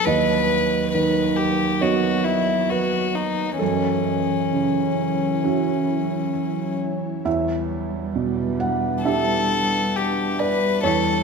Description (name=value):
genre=neoclassical piano and strings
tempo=67 BPM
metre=4/4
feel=rubato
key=E dorian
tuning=A4 = 440 Hz
part: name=warm violin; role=melody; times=0.0-11.2 s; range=C#4 to B4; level=-22 LUFS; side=left 6 dB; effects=none
part: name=felt-muted upright piano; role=accompaniment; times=0.0-11.2 s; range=D#2 to F#5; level=-23 LUFS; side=right 4 dB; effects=none
part: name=ethereal airy pad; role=sustained chords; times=0.0-11.2 s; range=F#3 to D#5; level=-31 LUFS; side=left 2 dB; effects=ensemble chorus, built-in reverb
part: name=dark cello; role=second line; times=0.1-11.2 s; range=E3 to G3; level=-28 LUFS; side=right 8 dB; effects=none
room=wet concert hall reverb, RT60 1.9 s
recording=recorded in a church or concert hall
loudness=-19 LUFS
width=side -5 dB against mid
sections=0.0-11.2 A section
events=none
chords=0.1 B/D#; 3.6 F#m7; 7.3 Em7